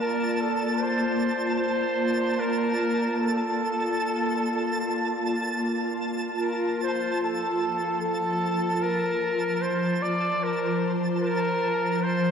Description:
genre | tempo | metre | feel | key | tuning
ambient | 75 BPM | 4/4 | straight | F major | A4 = 440 Hz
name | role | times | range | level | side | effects
warm flugelhorn | melody | 0.0-12.3 s | A4 to D5 | -27 LUFS | equal | diffuse ambient delay
ethereal airy pad | sustained chords | 0.0-12.3 s | F3 to A5 | -27 LUFS | equal | ensemble chorus, built-in reverb
twinkling granular texture | texture | 0.0-12.3 s | A5 | -32 LUFS | right 1 dB | built-in reverb
room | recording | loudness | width
wet lush hall reverb, RT60 2.8 s | none | -24 LUFS | side -7 dB against mid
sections
0.0-12.3 A section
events
none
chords
0.0 Bbmaj7; 6.4 Fsus4

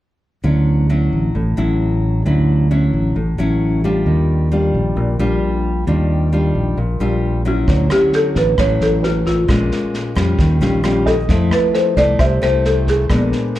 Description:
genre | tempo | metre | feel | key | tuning
bossa nova | 133 BPM | 4/4 | straight | unclear | A4 = 440 Hz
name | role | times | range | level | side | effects
nylon-string guitar | accompaniment | 0.4-13.6 s | A2 to F4 | -18 LUFS | left 2 dB | slapback echo
fingered electric bass | bass | 0.4-13.3 s | A1 to F2 | -17 LUFS | right 1 dB | none
folk marimba with medium mallets | melody | 7.5-13.5 s | F4 to E5 | -17 LUFS | equal | slapback echo
warm baby grand piano | accompaniment | 7.7-13.3 s | A4 to Eb5 | -28 LUFS | right 3 dB | slapback echo
vintage drum kit | drums | 7.7-13.6 s | kick drum, rim click, snare drum | -22 LUFS | equal | none
room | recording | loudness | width
small room ambience | live gig heard through the venue's PA, club reverb | -14 LUFS | side -14 dB against mid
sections
0.4-7.7 A section; 7.7-13.6 B section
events
none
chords
0.4 Dmaj9; 4.1 Ebmaj9; 7.7 Dmaj9; 9.5 Bbm7; 10.4 Eb9; 11.3 Fmaj7

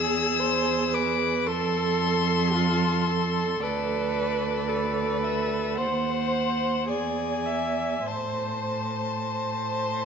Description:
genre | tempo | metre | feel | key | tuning
classical, slow romantic movement for string quartet | 49-57 BPM | 4/4 | rubato | A minor | A4 = 439 Hz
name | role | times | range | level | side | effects
clear violin | melody | 0.0-10.1 s | D5 to E6 | -29 LUFS | left 9 dB | none
rich violin | second line | 0.0-10.1 s | G#4 to D5 | -31 LUFS | left 2 dB | none
rich viola | accompaniment | 0.0-10.1 s | F4 to E5 | -29 LUFS | right 4 dB | none
clear cello | bass | 0.0-10.1 s | D2 to A2 | -29 LUFS | right 4 dB | none
room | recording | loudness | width
moderate concert hall reverb, RT60 1.9 s | nothing above 7.9 kHz | -24 LUFS | side -6 dB against mid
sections
0.0-10.1 A section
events
none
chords
0.0 E; 1.5 F; 3.6 D5; 5.8 D#m6; 6.9 E7; 8.1 Am

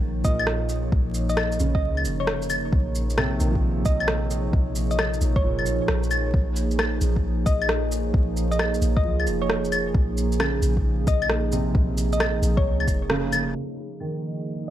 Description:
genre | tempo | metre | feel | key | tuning
future garage | 133 BPM | 4/4 | swing 66% on 16ths | Bb minor | A4 = 438 Hz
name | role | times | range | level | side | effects
felt-muted upright piano | accompaniment | 0.0-14.7 s | Bb2 to F3 | -32 LUFS | right 2 dB | sidechain pumping, tape echo
warbly tape-like pad | sustained chords | 0.0-14.7 s | F3 to Db5 | -29 LUFS | right 2 dB | chorus, built-in reverb, sidechain pumping
soft 808-style bass | bass | 0.0-13.5 s | F1 to Db2 | -25 LUFS | equal | sidechain pumping
thumb-piano-like synth pluck | melody | 0.2-14.7 s | Db5 to Eb5 | -30 LUFS | left 1 dB | chorus, tape echo
electronic kick drum | drums | 0.2-13.0 s | none | -23 LUFS | equal | overdrive
electronic shaker, claves and rim click | drums | 0.2-14.1 s | none | -26 LUFS | left 1 dB | overdrive
backwards swelling texture | texture | 13.9-14.7 s | Eb4 to Eb5 | -44 LUFS | left 3 dB | built-in reverb
room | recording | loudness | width
light reverb | vinyl crackle, low-pass filter | -21 LUFS | side -12 dB against mid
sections
0.0-13.6 A section; 13.6-14.7 B section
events
band accent 13.1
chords
0.0 Bbm7; 13.6 Bb7(no3)

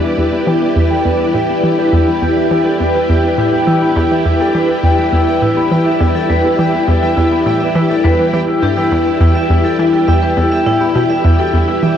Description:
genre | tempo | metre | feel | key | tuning
ambient, sequencer-driven space music | 103 BPM | 4/4 | straight | E minor | A4 = 440 Hz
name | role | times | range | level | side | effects
string machine, full ensemble | sustained chords | 0.0-12.0 s | E4 to D5 | -16 LUFS | equal | ensemble chorus
vibraphone with medium hard mallets | arpeggios | 0.0-11.9 s | B3 to E5 | -17 LUFS | left 2 dB | auto-pan, low-pass filter, tape echo
pulsing gated texture | texture | 0.2-12.0 s | G5 | -20 LUFS | left 1 dB | chorus, built-in reverb
hollow square pluck | riff | 0.2-12.0 s | E2 to E3 | -15 LUFS | equal | chorus, cassette tape, tape echo
room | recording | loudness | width
wet huge ambient reverb, RT60 7.8 s | worn, warbling old tape, cassette tape, warbly pitch drift | -11 LUFS | side -9 dB against mid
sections
0.0-12.0 A section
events
filter sweep on vibraphone 0.0-12.0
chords
0.0 Em7

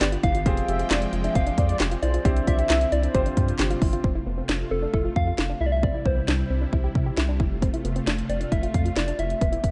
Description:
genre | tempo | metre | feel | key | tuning
synth-pop | 134 BPM | 4/4 | straight | unclear | A4 = 441 Hz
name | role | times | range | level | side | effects
soft struck synth lead | melody | 0.0-9.7 s | A4 to F5 | -31 LUFS | equal | chorus, slapback echo
clear concert grand piano | accompaniment | 0.0-4.0 s | B3 to D5 | -34 LUFS | equal | none
string machine, violas | sustained chords | 0.0-9.7 s | C3 to G5 | -36 LUFS | equal | ensemble chorus
soft round pluck | arpeggios | 0.0-9.7 s | B3 to Ab4 | -35 LUFS | equal | chorus, slapback echo
round analog bass | bass | 0.0-9.7 s | E1 to C3 | -29 LUFS | equal | none
house drum kit | drums | 0.0-9.7 s | handclaps, hi-hat, kick drum, snare drum | -27 LUFS | equal | overdrive
mellow synth brass | second line | 0.7-3.3 s | C5 to E5 | -35 LUFS | equal | chorus, slapback echo
room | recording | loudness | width
light reverb, digital ambience | dark, warm production, nothing above 10.8 kHz | -24 LUFS | mono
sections
0.0-4.0 A section; 4.0-9.7 B section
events
none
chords
0.5 Fmadd9; 2.2 Cadd9; 3.1 G7sus4; 4.0 F; 5.6 C; 7.4 F

